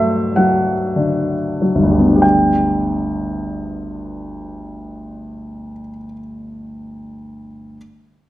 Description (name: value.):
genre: classical, romantic character piece for solo piano.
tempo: 30-37 BPM (dotted quarters).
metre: 6/8.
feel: rubato.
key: G major.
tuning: A4 = 445 Hz.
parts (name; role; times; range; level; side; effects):
warm grand piano; solo; 0.0-7.8 s; G1 to G5; -17 LUFS; equal; none.
room: wet recital hall reverb, RT60 1.4 s.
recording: none.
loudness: -14 LUFS.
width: side -15 dB against mid.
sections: 0.0-2.2 A section; 2.2-5.6 B section.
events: slowing down 0.0-2.2.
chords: 0.0 D7/G; 2.2 G.